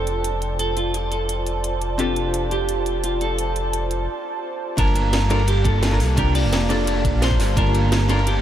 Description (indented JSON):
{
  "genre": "liquid drum and bass",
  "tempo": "172 BPM",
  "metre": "4/4",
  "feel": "straight",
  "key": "G minor",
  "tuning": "A4 = 439 Hz",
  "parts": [
    { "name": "clean electric guitar", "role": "melody", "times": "0.0-8.4 s", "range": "F4 to D5", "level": "-26 LUFS", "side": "right 2 dB", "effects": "wide subtle chorus, ping-pong delay" },
    { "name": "archtop guitar, miked and amplified", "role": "accompaniment", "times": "0.0-8.2 s", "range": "Bb3 to A5", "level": "-27 LUFS", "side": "left 1 dB", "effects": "wide subtle chorus, ping-pong delay" },
    { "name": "airy breathy pad", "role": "sustained chords", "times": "0.0-8.4 s", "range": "Bb3 to A5", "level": "-28 LUFS", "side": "right 2 dB", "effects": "chorus, sidechain pumping" },
    { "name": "dark detuned saw bass", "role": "bass", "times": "0.0-8.4 s", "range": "F1 to C2", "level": "-22 LUFS", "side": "equal", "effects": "none" },
    { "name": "drum and bass drum kit", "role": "drums", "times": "0.1-8.3 s", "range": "hi-hat, snare drum", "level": "-28 LUFS", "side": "right 1 dB", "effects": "overdrive" },
    { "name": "crunchy breakbeat drum kit", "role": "drums", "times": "4.8-8.4 s", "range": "hi-hat, ride cymbal, snare drum", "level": "-30 LUFS", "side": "equal", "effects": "high-pass filter on cymbals, high-pass filter on hats, high-pass filter on snare, high-pass filter on room" },
    { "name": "electronic kick drum", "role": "drums", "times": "4.8-7.6 s", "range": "none", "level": "-22 LUFS", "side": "equal", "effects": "none" }
  ],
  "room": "moderate huge ambient reverb, RT60 9.7 s",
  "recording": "dreamy mix soaked in reverb",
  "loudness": "-18 LUFS",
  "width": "side -11 dB against mid",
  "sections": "0.0-4.8 A section; 4.8-8.4 B section",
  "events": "filter sweep on analog synth pad 0.0-4.8; break 4.1-4.8; drop 4.8-8.4",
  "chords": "0.0 F6; 4.8 Gm9"
}